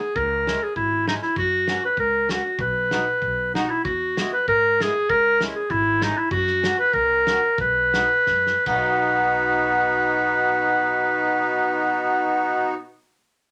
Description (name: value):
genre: alpine folk, alpine dance band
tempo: 76-100 BPM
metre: 2/4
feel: rubato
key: B major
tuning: A4 = 440 Hz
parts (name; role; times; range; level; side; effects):
- warm clarinet; melody; 0.0-12.7 s; D#4 to B4; -22 LUFS; equal; none
- upright bass; bass; 0.2-12.7 s; G#1 to G#2; -36 LUFS; equal; none
- loose indie drum kit; drums; 0.2-8.8 s; crash cymbal, hi-hat, kick drum, snare drum; -33 LUFS; equal; none
- accordion; accompaniment; 0.5-12.7 s; G#3 to F#4; -26 LUFS; equal; light tremolo tuning
room: moderate studio reverb, RT60 0.5 s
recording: none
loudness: -21 LUFS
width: mono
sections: 0.0-3.9 A section; 3.9-9.0 B section; 9.0-12.1 C section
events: slowing down 6.3-9.0; drum fill 8.3-9.0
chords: 0.2 C#m; 1.4 F#; 2.6 B; 3.9 E; 5.1 C#m; 6.3 F#; 7.6 B